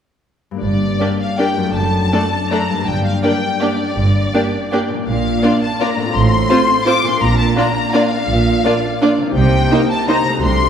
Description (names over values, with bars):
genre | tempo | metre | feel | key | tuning
classical | 165 BPM | 3/4 | uneven beats, rubato | G minor | A4 = 440 Hz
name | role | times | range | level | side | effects
concert harp | arpeggios | 0.5-10.7 s | F#2 to D5 | -22 LUFS | left 4 dB | none
warm symphonic violin section | melody | 0.6-10.7 s | D5 to D6 | -20 LUFS | left 3 dB | none
rich symphonic cello section | bass | 0.6-10.7 s | F#2 to C3 | -20 LUFS | right 3 dB | none
rich symphonic double bass section | bass | 0.6-10.7 s | F#1 to C2 | -21 LUFS | right 2 dB | none
rich symphonic violin section | second line | 1.0-10.2 s | Eb4 to D5 | -22 LUFS | left 2 dB | none
rich symphonic viola section | accompaniment | 1.0-10.2 s | A3 to F4 | -19 LUFS | right 2 dB | none
room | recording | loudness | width
wet scoring stage reverb, RT60 1.6 s | heard from further back in the room | -13 LUFS | side -8 dB against mid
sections
0.6-10.7 A section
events
none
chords
0.6 Gm; 1.8 D/F#; 2.9 Gm; 5.1 Bb; 6.1 F/A; 7.2 Bb; 9.4 Cm7